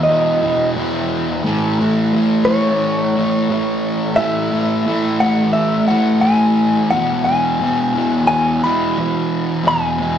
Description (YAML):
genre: rock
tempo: 88 BPM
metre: 4/4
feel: straight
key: E major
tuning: A4 = 440 Hz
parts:
  - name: direct-recorded clean electric guitar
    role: melody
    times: 0.0-10.2 s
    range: C#5 to B5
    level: -18 LUFS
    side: equal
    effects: harmonic tremolo
  - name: fuzz guitar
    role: riff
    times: 0.0-10.2 s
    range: E2 to A3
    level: -16 LUFS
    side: equal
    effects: distortion
room: wet stone room reverb, RT60 1.0 s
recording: rough rehearsal-room recording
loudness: -14 LUFS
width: side -9 dB against mid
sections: 0.0-10.2 A section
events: none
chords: 0.0 E5; 1.4 A; 6.9 E